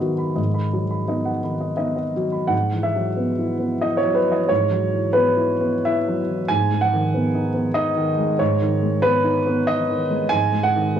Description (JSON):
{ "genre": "neoclassical minimalist piano", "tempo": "82-95 BPM", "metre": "3/4", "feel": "rubato", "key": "unclear", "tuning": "A4 = 441 Hz", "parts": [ { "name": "dark baby grand piano", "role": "solo", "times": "0.0-11.0 s", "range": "G#2 to B5", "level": "-18 LUFS", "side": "equal", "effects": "cassette tape" } ], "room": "moderate studio reverb, RT60 0.6 s", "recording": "home recording on cassette, small room ambience", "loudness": "-18 LUFS", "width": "side -9 dB against mid", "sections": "0.0-2.5 A section; 2.5-11.0 B section", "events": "none", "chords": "0.0 G#m7; 2.5 Esus2/G#; 6.5 G#m7; 10.3 D#m/G#" }